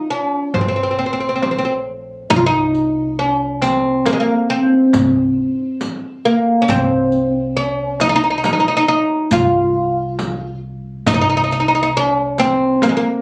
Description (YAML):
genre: Arabic maqam ensemble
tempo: 137 BPM (eighths)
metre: 10/8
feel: straight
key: C maqam bayati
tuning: A4 = 440 Hz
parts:
  - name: oud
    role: melody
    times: 0.0-13.2 s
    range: Ab3 to F4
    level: -17 LUFS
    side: equal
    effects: none
  - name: upright bass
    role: bass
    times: 0.5-12.8 s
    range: Bb1 to C2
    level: -28 LUFS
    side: equal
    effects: none
  - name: darbuka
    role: percussion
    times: 0.5-13.0 s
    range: none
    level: -30 LUFS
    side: equal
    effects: none
  - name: frame drum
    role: percussion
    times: 0.5-13.0 s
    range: none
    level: -26 LUFS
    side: equal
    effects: none
  - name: riq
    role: percussion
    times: 2.3-13.0 s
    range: none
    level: -28 LUFS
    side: equal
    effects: none
room: light reverb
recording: recorded on a phone in the room, club reverb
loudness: -17 LUFS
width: mono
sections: 0.0-2.3 A section; 2.3-13.2 B section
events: none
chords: none